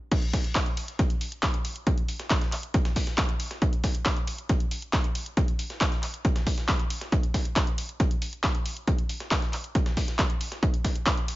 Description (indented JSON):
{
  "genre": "techno",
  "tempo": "137 BPM",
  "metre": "4/4",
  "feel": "straight",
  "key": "none",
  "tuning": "none",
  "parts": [
    { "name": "breakbeat sampler-style drum kit", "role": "drums", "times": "0.1-11.4 s", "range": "hi-hat, snare drum", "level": "-37 LUFS", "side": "equal", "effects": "sidechain pumping on hats, high-pass filter on hats, studio reverb, high-pass filter on snare, high-pass filter on room" },
    { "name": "electronic kick drum", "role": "drums", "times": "0.1-11.2 s", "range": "none", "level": "-25 LUFS", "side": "equal", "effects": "studio reverb" },
    { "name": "punchy analog drum machine", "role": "drums", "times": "0.1-11.4 s", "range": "crash cymbal, handclaps, hi-hat", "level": "-31 LUFS", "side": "equal", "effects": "sidechain pumping on hats, studio reverb, sidechain pumping on cymbals" }
  ],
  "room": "digital ambience",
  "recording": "nothing above 7.5 kHz",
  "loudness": "-24 LUFS",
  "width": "side -18 dB against mid",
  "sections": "0.1-11.4 A section",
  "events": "drop 0.1-11.4",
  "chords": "none",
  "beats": "| 0.12 0.55 0.99 1.43 | 1.87 2.31 2.74 3.18 | 3.62 4.06 4.50 4.93 | 5.37 5.81 6.25 6.68 | 7.12 7.56 8.00 8.44 | 8.88 9.31 9.75 10.19 | 10.63 11.06"
}